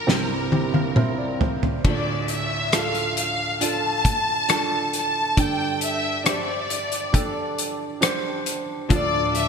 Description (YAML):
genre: pop ballad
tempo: 68 BPM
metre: 4/4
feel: straight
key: unclear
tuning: A4 = 440 Hz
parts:
  - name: warm studio violin section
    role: melody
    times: 0.0-9.5 s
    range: Bb4 to A5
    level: -25 LUFS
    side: left 1 dB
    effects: none
  - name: warm baby grand piano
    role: accompaniment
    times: 0.0-9.5 s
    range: C2 to G5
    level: -26 LUFS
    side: right 3 dB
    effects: lush chorus
  - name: loose indie drum kit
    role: drums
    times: 0.1-9.5 s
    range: crash cymbal, hi-hat, kick drum, rim click, snare drum, toms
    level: -23 LUFS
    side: left 1 dB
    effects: gated reverb
  - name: tonewheel organ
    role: sustained chords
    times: 8.9-9.5 s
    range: D2 to F3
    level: -30 LUFS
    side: left 2 dB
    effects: chorus vibrato, slow rotary speaker
  - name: direct-recorded clean electric guitar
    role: arpeggios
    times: 8.9-9.5 s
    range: D3 to A4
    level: -29 LUFS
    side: left 8 dB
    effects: spring reverb, ping-pong delay
room: moderate lush hall reverb, RT60 3.2 s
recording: bright 1980s-style digital production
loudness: -20 LUFS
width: side -6 dB against mid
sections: 0.0-1.8 A section; 1.8-9.5 B section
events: grand piano fill 0.0-1.8; drum fill 0.1-1.8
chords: 0.1 C; 1.8 Dm; 5.4 Gsus2; 8.9 Dm